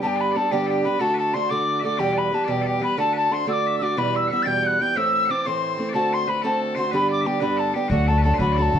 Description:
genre	celtic folk, Celtic jig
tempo	122 BPM (dotted quarters)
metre	6/8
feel	straight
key	G major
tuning	A4 = 440 Hz
part	mellow hollow mid whistle	melody	0.0-8.8 s	F#5 to A6	-23 LUFS	left 2 dB	slapback echo
part	loud bright bagpipes	second line	0.0-8.8 s	F#4 to G5	-31 LUFS	left 5 dB	none
part	picked acoustic archtop guitar	accompaniment	0.0-8.8 s	E2 to G4	-24 LUFS	right 2 dB	none
part	upright bass	bass	7.9-8.8 s	D2 to D3	-19 LUFS	left 1 dB	none
room	moderate studio reverb, RT60 0.6 s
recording	dark, warm production, nothing above 10.8 kHz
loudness	-19 LUFS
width	side -9 dB against mid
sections	0.0-7.9 A section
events	none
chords	0.0 G; 1.0 D; 2.0 Em; 3.0 D; 4.0 Em; 4.9 Am; 5.9 D7; 6.9 G; 7.9 D

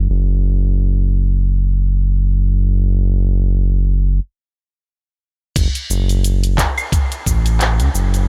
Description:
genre	sunset chillout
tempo	88 BPM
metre	4/4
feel	swing 56% on 16ths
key	F# minor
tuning	A4 = 443 Hz
part	round analog bass	bass	0.0-8.3 s	F#1 to C#2	-17 LUFS	equal	none
part	deep house drum kit	drums	5.6-8.3 s	cabasa, claves, crash cymbal, handclaps, hi-hat	-24 LUFS	equal	low-pass filter on hats, low-pass filter on cymbals, low-pass filter on perc, low-pass filter on snare, low-pass filter on room
part	electronic kick drum	drums	5.6-7.4 s	none	-20 LUFS	equal	none
room	little or no reverb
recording	none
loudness	-17 LUFS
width	mono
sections	0.0-5.6 A section; 5.6-8.3 B section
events	stop 4.2-5.6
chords	none

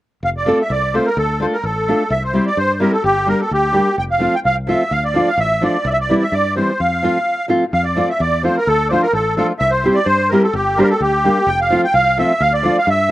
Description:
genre	balkan folk, Balkan wedding band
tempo	128 BPM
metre	2/4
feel	straight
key	F major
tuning	A4 = 440 Hz
part	musette accordion	melody	0.2-13.1 s	G4 to G5	-16 LUFS	right 1 dB	slapback echo
part	fingered electric bass	bass	0.2-13.1 s	F1 to G2	-22 LUFS	equal	none
part	nylon-string guitar	accompaniment	0.5-13.1 s	E3 to A4	-17 LUFS	equal	slapback echo
room	little or no reverb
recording	recorded outdoors, with no room sound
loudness	-14 LUFS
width	side -15 dB against mid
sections	0.2-7.7 A section; 7.7-13.1 A section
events	none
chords	0.2 F; 1.2 Dm; 2.1 C; 3.0 Gm; 4.0 F; 4.9 Dm; 5.9 C; 6.8 F; 8.7 Dm; 9.6 C; 10.5 Gm; 11.5 F; 12.4 Dm

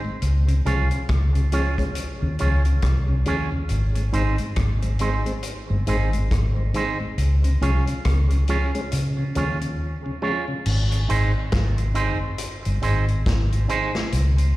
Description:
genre	roots reggae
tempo	69 BPM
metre	4/4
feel	swing 60% on 16ths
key	Ab major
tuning	A4 = 440 Hz
part	mellow tonewheel organ	accompaniment	0.0-10.5 s	Ab2 to Db4	-30 LUFS	left 1 dB	slow rotary speaker, dub echo, plate reverb, slapback echo
part	vintage muted fingered electric bass	bass	0.2-14.5 s	G1 to Db3	-20 LUFS	equal	none
part	vintage drum kit	drums	0.2-14.5 s	crash cymbal, hi-hat, kick drum, rim click, snare drum	-28 LUFS	equal	none
part	electric guitar with an envelope filter	accompaniment	0.7-13.9 s	C4 to Db5	-28 LUFS	right 4 dB	dub echo, plate reverb, slapback echo
room	light reverb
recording	live gig heard through the venue's PA, recital hall reverb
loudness	-20 LUFS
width	side -17 dB against mid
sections	0.0-10.7 A section; 10.7-14.6 B section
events	break 9.8-10.7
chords	0.2 Db; 3.7 Ab; 7.2 Db; 10.7 Ab

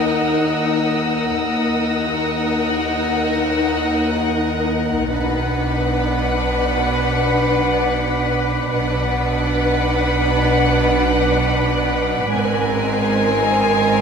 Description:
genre	cinematic, suspense film score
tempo	free time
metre	none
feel	none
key	unclear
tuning	A4 = 441 Hz
part	warm symphonic violin section	melody	0.0-14.0 s	Gb5 to Ab5	-24 LUFS	left 3 dB	none
part	warm symphonic violin section	second line	0.0-14.0 s	Bb4 to B4	-23 LUFS	left 1 dB	none
part	dark symphonic viola section	accompaniment	0.0-14.0 s	C4 to Eb4	-24 LUFS	right 1 dB	none
part	wind-like tuned noise texture	sustained chords	0.0-14.0 s	Eb4 to Gb5	-24 LUFS	left 2 dB	built-in reverb
part	warm chamber double bass section	bass	0.0-14.0 s	Ab1 to Eb2	-25 LUFS	right 2 dB	none
part	warm symphonic cello section	bass	0.0-14.0 s	Eb2 to B2	-24 LUFS	right 1 dB	none
part	dark studio violin section	texture	0.0-4.7 s	Eb6 to Bb6	-26 LUFS	left 1 dB	none
room	wet concert hall reverb, RT60 1.8 s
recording	recorded in a church or concert hall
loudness	-16 LUFS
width	side -6 dB against mid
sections	0.0-14.0 A section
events	none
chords	0.0 Ebm; 5.1 Bm; 12.3 Abadd9

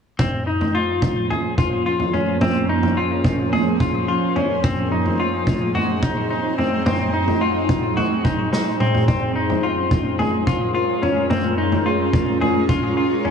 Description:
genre	dream pop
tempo	108 BPM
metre	4/4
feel	straight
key	Bb minor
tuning	A4 = 445 Hz
part	shimmering ambient pad	sustained chords	0.9-13.3 s	F3 to Db5	-22 LUFS	right 2 dB	chorus, built-in reverb, phaser
part	clean electric guitar	arpeggios	0.2-13.3 s	C4 to Ab4	-22 LUFS	left 3 dB	lush chorus, digital delay
part	vintage drum kit	drums	0.2-13.3 s	kick drum, snare drum, toms	-22 LUFS	equal	none
room	moderate huge ambient reverb, RT60 7.2 s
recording	none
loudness	-17 LUFS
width	side -6 dB against mid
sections	0.2-13.3 A section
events	drum fill 8.5-9.1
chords	0.2 Bbm9; 4.6 Ab7; 9.1 Bbm9

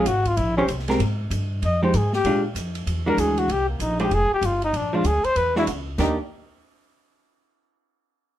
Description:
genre	jazz, small-group swing and bop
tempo	193 BPM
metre	4/4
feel	swing 62% on 8ths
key	Eb major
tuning	A4 = 438 Hz
part	breathy trumpet	melody	0.0-6.2 s	Bb3 to Eb5	-22 LUFS	left 2 dB	none
part	vintage hollow-body jazz guitar	accompaniment	0.0-6.2 s	Eb3 to C5	-24 LUFS	right 1 dB	none
part	upright bass	bass	0.0-6.2 s	F1 to Bb2	-25 LUFS	equal	none
part	open jazz drum kit	drums	0.1-6.1 s	crash cymbal, hi-hat, kick drum, ride cymbal, snare drum	-34 LUFS	right 1 dB	none
room	light reverb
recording	minimal, uncompressed stereo recording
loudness	-20 LUFS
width	side -12 dB against mid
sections	0.0-1.0 A section; 1.0-6.0 B section; 6.0-7.2 C section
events	none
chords	0.4 Eb6; 1.0 N.C.; 1.6 Fm9; 2.3 Bb7; 2.9 E9; 3.5 Abmaj9; 4.1 Fsus2; 4.7 Bb7; 5.4 E9; 6.0 Ebmaj7

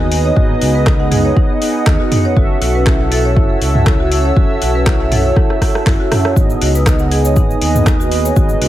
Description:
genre	afro house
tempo	120 BPM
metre	4/4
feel	swing 54% on 16ths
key	F# dorian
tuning	A4 = 440 Hz
part	dark analog pad	sustained chords	0.0-8.7 s	B4 to E6	-22 LUFS	right 1 dB	chorus, phaser, sidechain pumping
part	marimba with medium hard mallets	arpeggios	0.0-8.7 s	D#4 to F#5	-21 LUFS	equal	sidechain pumping, digital delay
part	mellow synth brass	stabs	0.0-8.7 s	B3 to E5	-19 LUFS	right 2 dB	chorus, cassette tape, sidechain pumping, digital delay
part	smooth gliding synth bass	bass	0.0-8.7 s	F#1 to D#2	-17 LUFS	equal	sidechain pumping
part	deep house drum kit	drums	0.1-8.7 s	handclaps, hi-hat, rim click, toms	-20 LUFS	equal	overdrive
part	electronic kick drum	drums	0.4-8.5 s	none	-13 LUFS	equal	overdrive
part	cabasa	percussion	6.4-8.6 s	none	-29 LUFS	left 5 dB	none
room	little or no reverb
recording	none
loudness	-11 LUFS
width	side -13 dB against mid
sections	0.0-8.7 A section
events	drum fill 5.4-6.4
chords	0.0 G#m; 2.4 F#m7; 6.4 G#m

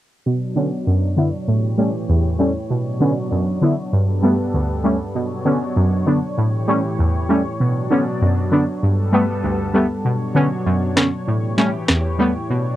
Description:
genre	dancehall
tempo	98 BPM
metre	4/4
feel	straight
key	B minor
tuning	A4 = 441 Hz
part	synth brass stab	accompaniment	0.3-12.8 s	D2 to E4	-17 LUFS	equal	chorus, low-pass filter, cassette tape
part	lush unison pad	sustained chords	0.3-12.8 s	G2 to C#5	-24 LUFS	equal	chorus, low-pass filter, cassette tape
part	electronic snare drum and rim click	drums	11.0-12.0 s	none	-17 LUFS	equal	cassette tape
room	moderate booth ambience, RT60 0.2 s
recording	home recording on cassette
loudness	-16 LUFS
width	side -14 dB against mid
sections	0.3-12.8 A section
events	filter sweep 0.3-12.8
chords	0.3 Bmadd9; 1.5 A7; 2.7 Bmadd9; 3.9 Gadd9; 5.2 Bmadd9; 6.4 A7; 7.6 Bmadd9; 8.8 Gadd9; 10.1 Bmadd9; 11.3 A7

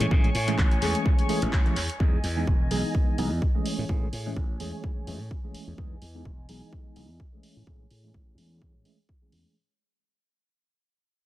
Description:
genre	filtered disco house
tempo	127 BPM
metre	4/4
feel	swing 55% on 16ths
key	unclear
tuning	A4 = 441 Hz
part	bell-like tine electric piano	accompaniment	0.0-9.5 s	E3 to G#4	-31 LUFS	right 1 dB	fast stereo tremolo, phaser, sidechain pumping, low-pass filter
part	warm chamber violin section	sustained chords	0.0-9.5 s	G#4 to C#6	-36 LUFS	left 1 dB	sidechain pumping, low-pass filter
part	glassy slap bass	bass	0.0-9.4 s	E1 to A2	-30 LUFS	equal	sidechain pumping, low-pass filter
part	punchy analog drum machine	drums	0.0-9.4 s	handclaps, hi-hat	-35 LUFS	equal	sidechain pumping on cymbals, small room ambience, sidechain pumping on hats, tape echo
part	electronic kick drum	drums	0.1-9.2 s	none	-25 LUFS	equal	overdrive, small room ambience
room	digital ambience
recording	echo-heavy mix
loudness	-24 LUFS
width	side -15 dB against mid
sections	0.0-9.6 A section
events	fade-out 0.0-9.6; filter sweep 0.0-9.6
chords	0.0 Amaj7; 2.0 Emaj7; 3.7 Amaj7; 5.8 Emaj7; 7.4 Amaj7

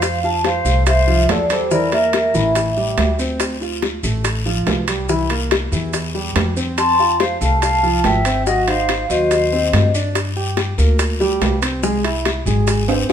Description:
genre	Afro-Cuban jazz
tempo	142 BPM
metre	4/4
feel	straight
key	F major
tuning	A4 = 437 Hz
part	vibraphone with medium hard mallets	melody	0.0-3.2, 6.8-9.9 s	C5 to C6	-18 LUFS	equal	none
part	jazz flute	second line	0.0-2.5, 6.8-9.9 s	A4 to A5	-22 LUFS	left 5 dB	none
part	upright bass	bass	0.0-13.1 s	F1 to G2	-20 LUFS	equal	none
part	bongos	percussion	0.0-13.1 s	none	-25 LUFS	left 6 dB	none
part	guiro	percussion	0.0-13.1 s	none	-29 LUFS	left 6 dB	none
part	maracas	percussion	0.0-13.1 s	none	-32 LUFS	right 7 dB	none
part	timbales	percussion	0.0-13.1 s	none	-24 LUFS	right 5 dB	none
part	warm concert grand piano	accompaniment	0.2-13.1 s	E3 to G5	-22 LUFS	right 2 dB	none
room	moderate large studio reverb, RT60 1.1 s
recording	band playing live in one room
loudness	-15 LUFS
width	side -8 dB against mid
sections	0.0-13.1 A section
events	drum fill 12.9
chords	0.0 Fmaj7; 1.7 Bbmaj7#11; 2.6 A5; 3.4 Dm7; 5.1 C7; 6.8 Fmaj9; 8.5 Ab7; 10.2 Gm; 11.8 Caug

